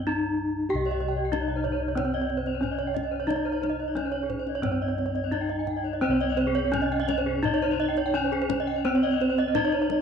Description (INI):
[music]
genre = Balinese gamelan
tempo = 85-95 BPM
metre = 4/4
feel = straight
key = C pelog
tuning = A4 = 436 Hz
[part]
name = gamelan-type bronze metallophone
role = melody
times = 0.0-10.0 s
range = C4 to G4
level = -27 LUFS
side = equal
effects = none
[part]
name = gamelan-type bossed gongs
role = bass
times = 0.0-10.0 s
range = C2 to G4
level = -33 LUFS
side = left 1 dB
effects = none
[part]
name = gamelan-type bronze metallophone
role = arpeggios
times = 0.7-10.0 s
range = Ab4 to Ab5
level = -32 LUFS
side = left 10 dB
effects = none
[part]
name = gamelan-type bronze metallophone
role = arpeggios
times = 0.8-9.9 s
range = C5 to G5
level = -31 LUFS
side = right 9 dB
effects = none
[part]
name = kendang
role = percussion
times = 0.9-10.0 s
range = none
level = -35 LUFS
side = left 9 dB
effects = none
[sound]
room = moderate echo chamber reverb, RT60 1.2 s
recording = 1960s-style stereo with parts hard left and right, nothing above 10.5 kHz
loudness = -24 LUFS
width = side -6 dB against mid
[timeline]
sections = 0.0-6.0 A section; 6.0-10.0 B section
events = break 0.0-0.7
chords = none